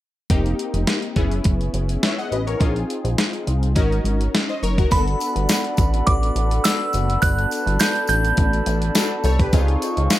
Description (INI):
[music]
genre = early-eighties boogie funk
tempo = 104 BPM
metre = 4/4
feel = straight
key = unclear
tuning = A4 = 441 Hz
[part]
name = funky polysynth comp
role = accompaniment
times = 0.3-10.2 s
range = Bb3 to Gb5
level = -26 LUFS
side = left 3 dB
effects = chorus
[part]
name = chorused synth bass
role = bass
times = 0.3-10.1 s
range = F1 to Db2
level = -20 LUFS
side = equal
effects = none
[part]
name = clean 12-bit digital drum machine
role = drums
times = 0.3-10.2 s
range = hi-hat, kick drum, snare drum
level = -21 LUFS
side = equal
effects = none
[part]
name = glassy synth bell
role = melody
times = 4.9-8.6 s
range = B5 to G6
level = -24 LUFS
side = right 2 dB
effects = chorus, tape echo
[part]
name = glass harmonica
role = sustained chords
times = 4.9-10.2 s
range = C4 to Db6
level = -27 LUFS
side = right 2 dB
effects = none
[part]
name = tambourine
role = percussion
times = 4.9-10.2 s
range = none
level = -32 LUFS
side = left 6 dB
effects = none
[sound]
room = little or no reverb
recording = none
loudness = -18 LUFS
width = side -14 dB against mid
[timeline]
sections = 0.3-4.9 A section; 4.9-10.2 B section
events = none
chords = 0.3 F9sus4; 1.2 Gb9sus4; 2.6 Bb9sus4; 3.8 Ab9sus4; 4.9 Gmaj9; 9.5 Dbmaj9